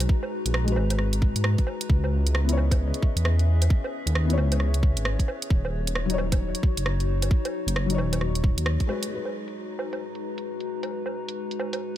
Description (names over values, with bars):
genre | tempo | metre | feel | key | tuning
future garage | 133 BPM | 4/4 | swing 62% on 16ths | G# minor | A4 = 440 Hz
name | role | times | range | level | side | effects
felt-muted upright piano | accompaniment | 0.0-12.0 s | F#3 to C#5 | -33 LUFS | left 5 dB | sidechain pumping, tape echo
warbly tape-like pad | sustained chords | 0.0-12.0 s | G#3 to A#5 | -33 LUFS | left 2 dB | chorus, built-in reverb, sidechain pumping
dark detuned saw bass | bass | 0.0-8.8 s | D#1 to G#2 | -24 LUFS | equal | tube saturation, sidechain pumping
garage drum kit | drums | 0.0-11.8 s | hi-hat, rim click, woodblock | -31 LUFS | right 2 dB | overdrive, low-pass filter on perc, low-pass filter on hats, low-pass filter on snare
electronic kick drum | drums | 0.1-8.9 s | none | -22 LUFS | equal | overdrive
room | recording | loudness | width
digital ambience | none | -23 LUFS | side -12 dB against mid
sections
0.0-9.1 A section; 9.1-12.0 B section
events
band accent 8.7; filter sweep on drum 9.1-12.0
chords
0.0 G#m7; 1.9 C#m7; 5.5 D#m7; 9.1 G#m7